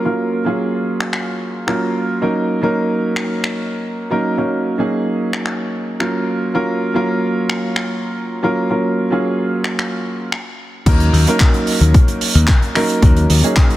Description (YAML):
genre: nu-disco, nu disco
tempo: 111 BPM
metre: 4/4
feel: straight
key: Eb minor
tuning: A4 = 441 Hz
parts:
  - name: clear baby grand piano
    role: accompaniment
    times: 0.0-13.8 s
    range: Gb3 to Bb4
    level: -18 LUFS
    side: right 1 dB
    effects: sidechain pumping, tape echo
  - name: damped 70s drum kit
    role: drums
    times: 1.0-13.8 s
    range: crash cymbal, finger snaps, handclaps, hi-hat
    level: -22 LUFS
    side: equal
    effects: studio ambience
  - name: picked electric bass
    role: bass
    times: 10.9-13.4 s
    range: Eb2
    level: -12 LUFS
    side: left 1 dB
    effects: none
  - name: electronic kick drum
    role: drums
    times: 10.9-13.7 s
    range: none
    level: -11 LUFS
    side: left 1 dB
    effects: studio ambience
room: light reverb, studio ambience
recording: dense, heavily limited modern master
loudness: -15 LUFS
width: side -15 dB against mid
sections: 0.0-10.9 A section; 10.9-13.8 B section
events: drop 10.9-13.8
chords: 0.0 Gbmaj7; 2.2 Ebm7; 6.3 Gbmaj7; 10.9 Ebm7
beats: | 0.05 0.59 1.14 1.68 | 2.22 2.76 3.30 3.84 | 4.38 4.92 5.46 6.00 | 6.54 7.08 7.62 8.16 | 8.70 9.24 9.78 10.32 | 10.86 11.40 11.95 12.49 | 13.03 13.57